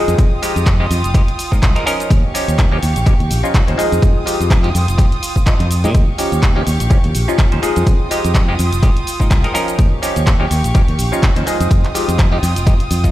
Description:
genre	filtered disco house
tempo	125 BPM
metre	4/4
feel	swing 56% on 16ths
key	F minor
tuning	A4 = 439 Hz
part	bright clav	accompaniment	0.0-13.1 s	F3 to C5	-20 LUFS	equal	phaser, sidechain pumping
part	rich chamber violin section	sustained chords	0.0-13.1 s	F4 to Eb6	-25 LUFS	right 2 dB	sidechain pumping
part	modern bright fingered electric bass	bass	0.1-13.1 s	F1 to Bb2	-17 LUFS	equal	sidechain pumping
part	punchy analog drum machine	drums	0.1-13.1 s	handclaps, hi-hat, shaker	-24 LUFS	equal	sidechain pumping on hats, sidechain pumping on cymbals, sidechain pumping on perc
part	electronic kick drum	drums	0.2-13.1 s	none	-13 LUFS	equal	none
room	little or no reverb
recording	played on a big sound system in a bare room, stone room reverb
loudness	-12 LUFS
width	side -14 dB against mid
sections	0.0-13.1 A section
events	none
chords	0.0 Fm9; 2.1 Eb9; 3.8 Fm9; 5.9 Eb9; 7.6 Fm9; 9.8 Eb9; 11.5 Fm9

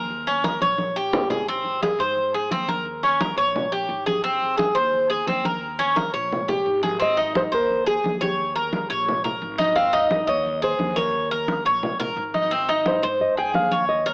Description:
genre	latin, Cuban son and guajira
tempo	174 BPM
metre	4/4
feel	straight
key	Ab major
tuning	A4 = 442 Hz
part	Cuban tres	arpeggios	0.0-14.1 s	C4 to Eb5	-24 LUFS	equal	none
part	upright bass	bass	0.0-14.1 s	Ab1 to Ab2	-39 LUFS	equal	none
part	congas	percussion	0.1-14.1 s	none	-31 LUFS	equal	none
part	nylon-string guitar	melody	7.0-14.1 s	G4 to G5	-26 LUFS	equal	cassette tape
room	light reverb, studio ambience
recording	home recording on cassette, AM radio sound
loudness	-23 LUFS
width	mono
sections	0.0-7.0 A section; 7.0-14.1 B section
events	drum fill 0.6-1.5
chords	0.1 Eb7; 1.5 Ab; 2.9 Eb7; 4.2 Ab; 5.6 Eb7; 7.0 Ab; 8.4 Eb7; 9.8 Ab; 11.1 Eb5; 12.5 Ab

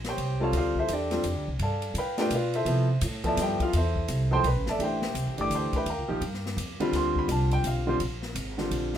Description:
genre	jazz, small-group swing and bop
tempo	169 BPM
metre	3/4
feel	swing 63% on 8ths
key	A minor from 4.8 s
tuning	A4 = 440 Hz
part	upright bass	bass	0.0-9.0 s	G1 to C3	-29 LUFS	equal	none
part	swinging big-band drum kit	drums	0.0-9.0 s	hi-hat, kick drum, ride cymbal, snare drum	-36 LUFS	left 1 dB	none
part	warm upright piano	accompaniment	0.1-9.0 s	D3 to D6	-28 LUFS	equal	none
room	light reverb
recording	minimal, uncompressed stereo recording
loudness	-25 LUFS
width	side -10 dB against mid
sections	0.0-4.8 A section; 4.8-9.0 A section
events	none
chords	0.0 A7alt; 0.5 Dm11; 1.6 G9; 4.8 Am9; 5.9 D#add9; 6.9 Dm7; 8.0 Bb9

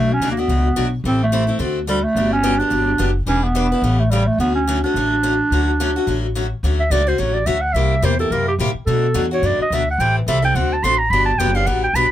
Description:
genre	acoustic string swing (jazz manouche)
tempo	215 BPM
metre	4/4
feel	swing 58% on 8ths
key	D major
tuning	A4 = 441 Hz
part	growling clarinet	melody	0.0-12.1 s	G3 to C6	-18 LUFS	right 2 dB	none
part	picked steel-string acoustic guitar	accompaniment	0.0-12.1 s	B2 to B4	-22 LUFS	left 3 dB	none
part	upright bass	bass	0.0-12.1 s	E1 to B2	-20 LUFS	equal	none
room	little or no reverb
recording	close, detailed microphones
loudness	-15 LUFS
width	side -12 dB against mid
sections	0.0-6.6 A section; 6.6-12.1 B section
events	clarinet solo 6.6-12.1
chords	0.0 Bm7; 1.0 Am7; 1.6 D7; 2.2 Gmaj7; 3.3 Em7; 3.8 A7; 4.4 Dmaj7; 7.7 C7#11; 8.9 Bm7; 10.0 Am7; 10.5 D7; 11.1 Gmaj9

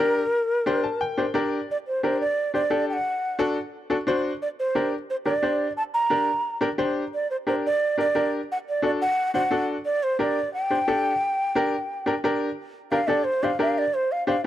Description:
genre	latin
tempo	176 BPM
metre	4/4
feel	straight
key	G harmonic minor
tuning	A4 = 440 Hz
part	breathy hollow bansuri	melody	0.0-14.4 s	Bb4 to Bb5	-24 LUFS	right 1 dB	none
part	bright upright piano	accompaniment	0.0-14.5 s	D4 to A5	-25 LUFS	left 1 dB	none
room	light reverb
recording	dry, close 1970s-style studio recording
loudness	-22 LUFS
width	side -12 dB against mid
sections	0.0-12.6 A section; 12.6-14.5 B section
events	upright piano fill 0.7-1.7; bansuri solo 12.6-14.5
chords	0.0 Gm; 3.0 D7; 4.4 Gm; 8.5 D; 9.9 Gm

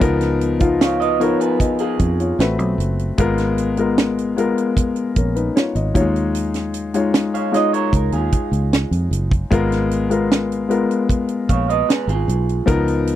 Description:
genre	lush 1970s-style soul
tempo	76 BPM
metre	4/4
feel	straight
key	G# dorian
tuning	A4 = 440 Hz
part	warm grand piano	accompaniment	0.0-13.2 s	E#3 to E#5	-19 LUFS	left 4 dB	none
part	fingered electric bass	bass	0.0-13.2 s	F#1 to E#2	-21 LUFS	right 1 dB	none
part	tight funk drum kit	drums	0.0-13.2 s	hi-hat, kick drum, snare drum	-19 LUFS	right 1 dB	none
part	electric guitar through a small old amp	riff	0.8-2.4, 7.3-12.7 s	E#4 to E#5	-22 LUFS	right 9 dB	none
room	little or no reverb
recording	dry, close 1970s-style studio recording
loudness	-16 LUFS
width	side -12 dB against mid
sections	0.0-13.2 A section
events	none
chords	0.0 C#13; 2.4 Am69; 3.2 G#m69; 6.0 D#9sus4; 9.5 G#m69

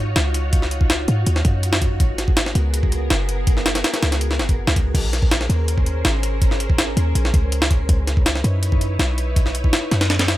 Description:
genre	drum and bass, jungle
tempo	163 BPM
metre	4/4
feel	straight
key	Bb phrygian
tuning	A4 = 440 Hz
part	soft string machine	sustained chords	0.0-10.4 s	Cb4 to Db5	-27 LUFS	equal	ensemble chorus
part	warm 808-style bass	bass	0.0-10.4 s	Gb1 to Ab2	-20 LUFS	equal	none
part	jungle sampler-style drum kit	drums	0.2-10.4 s	crash cymbal, hi-hat, kick drum, snare drum	-18 LUFS	equal	small room reverb
room	little or no reverb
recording	none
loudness	-16 LUFS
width	side -15 dB against mid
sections	0.0-4.9 A section; 4.9-10.4 A section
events	drop 0.0-4.9, 4.9-10.4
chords	0.0 Ebm9; 2.0 Abm9; 4.9 Bbm9; 7.9 Dbm9

